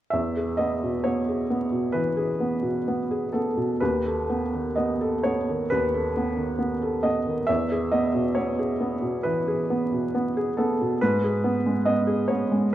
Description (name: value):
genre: classical, romantic nocturne for solo piano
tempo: 66 BPM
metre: 4/4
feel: uneven beats, rubato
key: E major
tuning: A4 = 439 Hz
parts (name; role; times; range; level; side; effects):
- felt-muted upright piano; solo; 0.1-12.7 s; D#2 to E5; -22 LUFS; right 1 dB; none
room: wet recital hall reverb, RT60 1.5 s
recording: worn, warbling old tape, cassette tape, vinyl crackle, warbly pitch drift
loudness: -22 LUFS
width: side -13 dB against mid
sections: 0.1-12.7 A section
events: none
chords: 0.1 E; 3.8 B7/D#; 7.5 E; 11.0 G#madd11